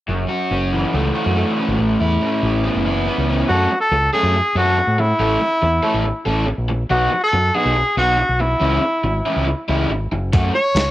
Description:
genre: indie rock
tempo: 141 BPM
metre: 4/4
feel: straight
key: unclear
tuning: A4 = 437 Hz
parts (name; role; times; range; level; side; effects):
- crunchy overdriven guitar; riff; 0.1-10.8 s; F#2 to A4; -20 LUFS; equal; cassette tape
- growling fingered electric bass; bass; 0.1-10.9 s; F#1 to A2; -20 LUFS; equal; overdrive
- clear trumpet; melody; 3.5-10.9 s; E4 to C#5; -18 LUFS; equal; cassette tape
- clean 12-bit digital drum machine; drums; 10.3-10.9 s; hi-hat, kick drum, snare drum; -16 LUFS; equal; none
room: little or no reverb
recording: home recording on cassette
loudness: -16 LUFS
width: side -15 dB against mid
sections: 0.1-3.5 A section; 3.5-10.9 B section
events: none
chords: 0.1 F#m7; 1.8 Aadd9; 3.5 F#m; 5.2 A; 6.9 B; 8.6 C#m; 10.3 F#m

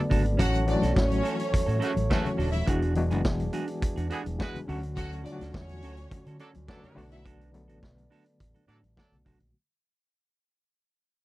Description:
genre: disco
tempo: 105 BPM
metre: 4/4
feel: straight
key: B dorian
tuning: A4 = 440 Hz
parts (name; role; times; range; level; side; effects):
- overdriven reed electric piano; accompaniment; 0.0-9.6 s; D3 to A4; -32 LUFS; left 2 dB; fast tremolo
- mellow French horn section; sustained chords; 0.0-9.5 s; D3 to D5; -36 LUFS; right 2 dB; none
- semi-hollow electric guitar; accompaniment; 0.1-9.4 s; C#4 to A4; -35 LUFS; right 4 dB; none
- overdriven fingered electric bass; bass; 0.1-9.5 s; D#1 to D3; -30 LUFS; equal; none
- vintage drum kit; drums; 0.1-9.5 s; hi-hat, kick drum, snare drum; -28 LUFS; equal; none
- congas; percussion; 0.1-9.4 s; none; -37 LUFS; left 4 dB; none
- warm studio violin section; second line; 0.4-7.2 s; B3 to F#5; -34 LUFS; left 2 dB; none
- clear horn section; stabs; 1.8-9.2 s; C#3 to B4; -35 LUFS; right 2 dB; none
room: little or no reverb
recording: dry, close 1970s-style studio recording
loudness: -25 LUFS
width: side -17 dB against mid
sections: 0.0-9.5 A section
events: fade-out 0.0-9.5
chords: 0.4 A6; 2.7 E9; 4.7 Dmaj7; 7.0 Bm7

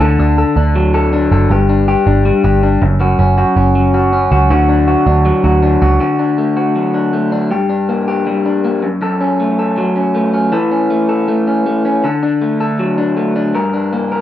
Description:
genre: jangly indie pop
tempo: 159 BPM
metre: 4/4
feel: straight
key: D major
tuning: A4 = 442 Hz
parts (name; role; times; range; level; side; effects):
- electric guitar through a small old amp; arpeggios; 0.0-14.2 s; F#2 to Bb4; -12 LUFS; left 1 dB; none
- vintage muted picked electric bass; bass; 0.0-6.0 s; F#1 to D2; -13 LUFS; right 1 dB; none
room: light reverb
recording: none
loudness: -11 LUFS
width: side -12 dB against mid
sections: 0.0-6.0 A section; 6.0-14.2 B section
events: none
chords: 0.0 D; 1.5 G5; 2.8 F#5; 4.5 D; 7.5 Gm; 8.8 F#m; 10.5 A/E; 12.0 D; 13.6 Gm

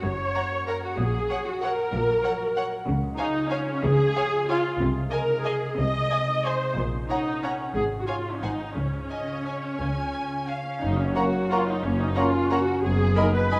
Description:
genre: classical, orchestral ballroom waltz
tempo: 164-206 BPM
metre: 3/4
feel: rubato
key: Db major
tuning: A4 = 442 Hz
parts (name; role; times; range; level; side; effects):
- clear studio viola section; accompaniment; 0.0-13.6 s; Db4 to Eb5; -29 LUFS; equal; none
- concert harp; arpeggios; 0.0-13.6 s; Gb2 to D#6; -35 LUFS; equal; none
- rich studio cello section; bass; 0.0-13.1 s; Gb2 to Db3; -33 LUFS; equal; none
- rich studio double bass section; bass; 0.0-13.1 s; Gb1 to Db2; -33 LUFS; equal; none
- warm studio violin section; melody; 0.4-13.6 s; Gb5 to B5; -42 LUFS; equal; none
- warm studio violin section; second line; 0.4-13.6 s; C5 to Ab5; -36 LUFS; equal; none
- concert flute; second line; 11.2-13.6 s; A#5 to B5; -37 LUFS; equal; none
- dark clarinet; second line; 11.2-13.6 s; F#3 to C#4; -32 LUFS; equal; none
- warm cor anglais; second line; 11.2-13.6 s; C#5 to D#5; -35 LUFS; equal; none
- mellow bassoon; accompaniment; 11.2-13.6 s; G#3 to A#3; -34 LUFS; equal; none
- mellow French horn section; sustained chords; 11.2-13.6 s; G#3 to D#4; -34 LUFS; equal; none
room: wet concert hall reverb, RT60 1.9 s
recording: none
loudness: -26 LUFS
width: mono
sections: 0.0-10.8 A section; 10.8-13.6 B section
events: none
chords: 0.0 Gb; 1.0 Gb/Bb; 2.9 Db; 4.8 Ab/C; 6.8 Gb/Bb; 7.8 Db/Ab; 8.4 Ab; 8.8 Db; 10.8 F#; 12.8 G#m7/F#

